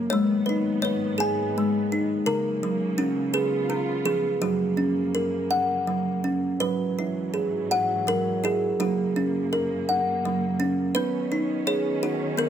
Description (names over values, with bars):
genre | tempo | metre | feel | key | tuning
children's music, lullaby | 56 BPM (dotted quarters) | 6/8 | rubato | F# major | A4 = 440 Hz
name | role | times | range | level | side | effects
kalimba | melody | 0.0-12.5 s | C#3 to G#5 | -23 LUFS | equal | none
warm studio string section | sustained chords | 0.0-12.5 s | F#2 to E#4 | -33 LUFS | right 1 dB | none
room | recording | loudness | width
light reverb | close, detailed microphones | -22 LUFS | side -9 dB against mid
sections
0.0-6.6 A section; 6.6-12.5 B section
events
none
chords
0.1 G#m; 2.3 F#/C#; 3.3 C#7; 4.4 F#; 6.6 Eadd9; 8.8 F#; 11.0 Badd9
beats
| 0.12 1.20 | 2.26 3.33 | 4.41 5.50 | 6.61 7.71 | 8.80 9.88 | 10.95 12.02